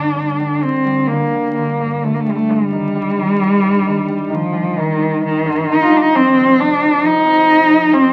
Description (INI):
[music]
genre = celtic folk, Celtic slow air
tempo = 66 BPM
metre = 4/4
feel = rubato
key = unclear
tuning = A4 = 444 Hz
[part]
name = warm cello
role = melody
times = 0.0-8.1 s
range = Eb3 to F4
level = -16 LUFS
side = equal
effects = none
[part]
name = concert harp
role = accompaniment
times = 0.0-8.1 s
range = F2 to G4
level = -23 LUFS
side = equal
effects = none
[sound]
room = light reverb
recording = very old 78 rpm record, vinyl crackle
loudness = -15 LUFS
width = mono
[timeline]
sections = 0.0-8.1 A section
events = none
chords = 0.0 G5; 2.5 Eb/G; 6.1 F5